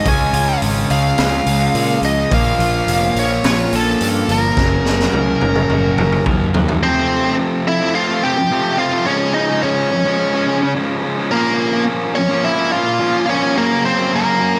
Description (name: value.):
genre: quiet-loud alternative rock.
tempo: 107 BPM.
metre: 4/4.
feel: straight.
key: unclear.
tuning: A4 = 440 Hz.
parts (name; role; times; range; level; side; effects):
bluesy overdriven lead guitar; melody; 0.0-14.6 s; Bb3 to Ab5; -20 LUFS; equal; distortion, digital delay.
twelve-string electric guitar; arpeggios; 0.0-6.8 s; Gb2 to Gb4; -30 LUFS; equal; none.
thick fuzz guitar; riff; 0.0-14.6 s; F2 to Db4; -21 LUFS; equal; distortion.
fuzz picked electric bass; bass; 0.1-6.8 s; F1 to Bb2; -23 LUFS; equal; overdrive.
raw garage drum kit; drums; 0.1-6.8 s; hi-hat, kick drum, snare drum, toms; -23 LUFS; equal; none.
room: moderate concert hall reverb, RT60 2.0 s.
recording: none.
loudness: -16 LUFS.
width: mono.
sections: 0.0-6.8 A section; 6.8-14.6 B section.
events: half time 0.0-6.8; drum fill 4.6-6.8.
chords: 0.1 Db; 2.3 Bbm; 4.6 Gb; 6.8 F; 9.1 Db; 11.3 Bbm; 13.6 Gb.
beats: | 0.07 0.63 1.19 1.75 | 2.32 2.88 3.44 4.01 | 4.57 5.13 5.70 6.26 | 6.83 7.39 7.95 8.51 | 9.07 9.64 10.20 10.76 | 11.32 11.88 12.45 13.01 | 13.57 14.13.